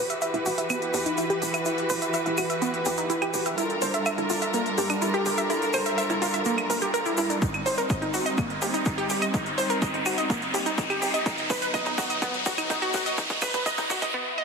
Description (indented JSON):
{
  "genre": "melodic techno",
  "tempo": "125 BPM",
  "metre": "4/4",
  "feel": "straight",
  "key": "E harmonic minor",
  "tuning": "A4 = 443 Hz",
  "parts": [
    { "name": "rich studio string section", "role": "sustained chords", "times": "0.0-14.1 s", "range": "E3 to B4", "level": "-29 LUFS", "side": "right 1 dB", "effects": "sidechain pumping" },
    { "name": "wide unison pluck", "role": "arpeggios", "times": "0.0-14.4 s", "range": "Bb3 to E5", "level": "-27 LUFS", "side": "right 1 dB", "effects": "sidechain pumping, dub echo" },
    { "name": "tight sequencer bass", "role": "bass", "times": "0.0-14.1 s", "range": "D#1 to G2", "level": "-37 LUFS", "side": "equal", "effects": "sidechain pumping, high-pass filter" },
    { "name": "riser and swell", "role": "sound effects", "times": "1.7-14.4 s", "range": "none", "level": "-33 LUFS", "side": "equal", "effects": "none" },
    { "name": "electronic hi-hat and claves", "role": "drums", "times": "0.1-14.1 s", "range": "none", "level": "-33 LUFS", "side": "right 3 dB", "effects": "high-pass filter on perc, high-pass filter on hats, high-pass filter on room" },
    { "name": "egg shaker", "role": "percussion", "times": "0.1-14.1 s", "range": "none", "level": "-37 LUFS", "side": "left 4 dB", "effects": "none" },
    { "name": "electronic kick drum", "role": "drums", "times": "7.4-14.1 s", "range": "none", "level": "-30 LUFS", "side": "equal", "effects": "none" }
  ],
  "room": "wet scoring stage reverb, RT60 1.6 s",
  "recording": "heavily compressed radio sound, multiband compression, high-pass filter",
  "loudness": "-23 LUFS",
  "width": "side -5 dB against mid",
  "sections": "0.0-14.4 A section",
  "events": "build-up 0.0-14.4; filter sweep on synth pluck 0.0-14.4; filter sweep 0.0-14.4; riser 1.7-14.1; drum fill 7.4-14.1; swell 14.1-14.4",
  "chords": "0.0 Emadd9; 3.6 Gm7; 7.4 D#6; 11.3 B",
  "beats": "0.22 0.70 1.18 | 1.66 2.14 2.62 3.10 | 3.58 4.06 4.54 5.02 | 5.50 5.98 6.46 6.94 | 7.42 7.90 8.38 8.86 | 9.34 9.82 10.30 10.78 | 11.26 11.74 12.22 12.70 | 13.18 13.66 14.14"
}